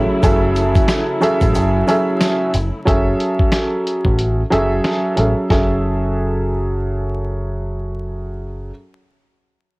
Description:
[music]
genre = hip hop, boom-bap hip-hop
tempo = 91 BPM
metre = 4/4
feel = swing 58% on 16ths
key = F# minor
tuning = A4 = 442 Hz
[part]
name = dark upright piano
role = accompaniment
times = 0.0-8.7 s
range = F#3 to E5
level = -18 LUFS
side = right 1 dB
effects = cassette tape, high-pass filter, low-pass filter
[part]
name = dark studio string section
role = sustained chords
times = 0.0-2.8 s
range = C#3 to E4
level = -25 LUFS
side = left 1 dB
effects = stereo widening, high-pass filter, low-pass filter, cassette tape
[part]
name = deep dub picked electric bass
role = bass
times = 0.0-8.7 s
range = F#1 to A1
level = -20 LUFS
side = equal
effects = none
[part]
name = dusty soul sampler-style drum kit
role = drums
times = 0.2-5.7 s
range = hi-hat, kick drum, snare drum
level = -18 LUFS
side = equal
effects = cassette tape
[part]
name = tube shaker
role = percussion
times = 0.2-2.7 s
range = none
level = -43 LUFS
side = left 2 dB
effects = none
[sound]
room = studio ambience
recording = home recording on cassette, vinyl crackle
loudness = -15 LUFS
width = side -24 dB against mid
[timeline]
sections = 0.0-2.9 A section; 2.9-5.5 B section; 5.5-8.1 C section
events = kick muted 1.5-2.9, 4.2-5.5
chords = 0.0 F#m7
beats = | 0.23 0.89 1.55 2.21 | 2.87 3.53 4.19 4.84 | 5.50 6.16 6.82 7.48

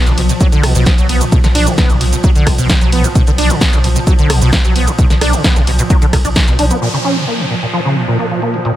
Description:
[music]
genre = driving peak-time techno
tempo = 131 BPM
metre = 4/4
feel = straight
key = unclear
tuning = A4 = 445 Hz
[part]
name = acid bass, saw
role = riff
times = 0.0-8.7 s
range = A2 to D4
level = -16 LUFS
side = equal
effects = ensemble chorus, sidechain pumping, tape echo
[part]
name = swarming drone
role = drone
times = 0.0-8.8 s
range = Bb2 to F3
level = -20 LUFS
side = right 1 dB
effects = built-in reverb, sidechain pumping
[part]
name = saturated sub bass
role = bass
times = 0.1-6.7 s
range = B1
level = -15 LUFS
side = equal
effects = tube saturation, sidechain pumping, low-pass filter
[part]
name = punchy analog drum machine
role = drums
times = 0.1-8.7 s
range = hi-hat, ride cymbal, rim click, shaker, snare drum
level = -18 LUFS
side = equal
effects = sidechain pumping on hats, low-pass filter on hats, sidechain pumping on cymbals, low-pass filter on cymbals, sidechain pumping on perc, low-pass filter on perc, low-pass filter on snare, low-pass filter on room
[part]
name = electronic kick drum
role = drums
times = 0.4-6.5 s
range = none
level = -12 LUFS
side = equal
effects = none
[part]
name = downlifter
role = sound effects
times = 6.8-8.8 s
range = none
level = -21 LUFS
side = equal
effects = none
[sound]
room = little or no reverb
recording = none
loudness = -10 LUFS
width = side -13 dB against mid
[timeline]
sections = 0.0-6.8 A section; 6.8-8.8 B section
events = drop 0.0-6.8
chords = 0.0 Bm; 6.8 Bbm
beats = 0.41 0.86 | 1.32 1.78 2.24 2.69 | 3.15 3.61 4.07 4.53 | 4.99 5.44 5.90 6.36 | 6.82 7.28 7.73 8.19 | 8.65

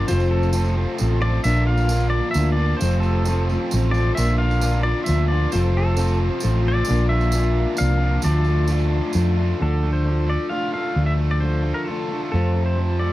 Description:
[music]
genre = folk rock and heartland rock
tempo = 132 BPM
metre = 3/4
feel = straight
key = D minor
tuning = A4 = 444 Hz
[part]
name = pedal steel guitar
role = melody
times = 0.0-13.1 s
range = A4 to F5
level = -27 LUFS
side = equal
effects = none
[part]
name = picked plugged-in steel-string acoustic guitar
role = accompaniment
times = 0.0-13.1 s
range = F2 to F4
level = -26 LUFS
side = left 4 dB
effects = none
[part]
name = bright tonewheel organ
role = sustained chords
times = 0.0-9.6 s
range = F4 to Bb5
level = -34 LUFS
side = equal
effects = slow rotary speaker
[part]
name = overdriven electric guitar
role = riff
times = 0.0-13.1 s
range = F2 to F4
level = -28 LUFS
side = right 2 dB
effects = none
[part]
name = hollow-body short-scale fingered electric bass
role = bass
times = 0.0-13.1 s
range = F1 to F2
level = -19 LUFS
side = equal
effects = none
[part]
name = tambourine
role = percussion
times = 0.1-9.2 s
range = none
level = -35 LUFS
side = right 5 dB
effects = none
[sound]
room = little or no reverb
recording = dry, close 1970s-style studio recording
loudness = -18 LUFS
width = side -16 dB against mid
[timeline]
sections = 0.0-9.6 A section; 9.6-13.1 B section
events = none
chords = 0.1 F; 1.4 Bb; 2.8 F; 4.2 Bb; 5.5 F; 6.9 Bb; 8.2 Dmadd9; 9.6 Dm; 12.3 F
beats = | 0.09 0.54 1.00 | 1.45 1.90 2.35 | 2.81 3.26 3.71 | 4.16 4.62 5.07 | 5.52 5.97 6.43 | 6.88 7.33 7.79 | 8.24 8.69 9.15 | 9.60 10.05 10.51 | 10.96 11.42 11.88 | 12.33 12.79

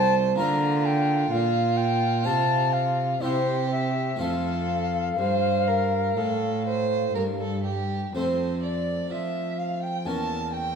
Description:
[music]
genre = classical, baroque-style sonata movement with continuo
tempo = 62 BPM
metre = 4/4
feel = rubato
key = F major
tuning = A4 = 440 Hz
[part]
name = concert flute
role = melody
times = 0.0-10.8 s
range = C5 to Bb5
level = -27 LUFS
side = left 7 dB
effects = none
[part]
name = rich violin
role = second line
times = 0.0-10.8 s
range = F4 to A5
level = -28 LUFS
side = right 7 dB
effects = none
[part]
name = harpsichord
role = accompaniment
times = 0.0-10.8 s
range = C2 to C5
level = -31 LUFS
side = equal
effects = none
[part]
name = warm cello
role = bass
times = 0.0-10.8 s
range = C2 to F3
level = -28 LUFS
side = right 2 dB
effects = none
[sound]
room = wet recital hall reverb, RT60 1.4 s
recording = none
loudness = -22 LUFS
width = side -6 dB against mid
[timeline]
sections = 0.0-8.1 A section; 8.1-10.8 B section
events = none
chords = 0.4 Bb/D; 2.3 F/C; 3.2 C; 4.2 F; 10.1 A7b9/E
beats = | 0.39 1.32 2.26 3.23 | 4.21 5.19 6.18 7.16 | 8.15 9.11 10.05

